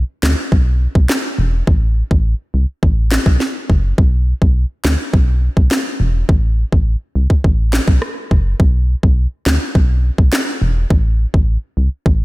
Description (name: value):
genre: dancehall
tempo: 104 BPM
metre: 4/4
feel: straight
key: A dorian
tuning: A4 = 440 Hz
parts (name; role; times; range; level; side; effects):
- solid FM bass; bass; 0.0-12.2 s; E1 to D2; -14 LUFS; equal; none
- island pop drum kit; drums; 0.2-12.2 s; handclaps, kick drum, rim click, snare drum; -14 LUFS; equal; none
room: digital ambience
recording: none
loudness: -13 LUFS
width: side -20 dB against mid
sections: 0.0-12.2 A section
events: none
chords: none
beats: 0.52 1.10 | 1.67 2.25 2.83 3.40 | 3.98 4.56 5.13 5.71 | 6.29 6.87 7.44 8.02 | 8.60 9.17 9.75 10.33 | 10.90 11.48 12.06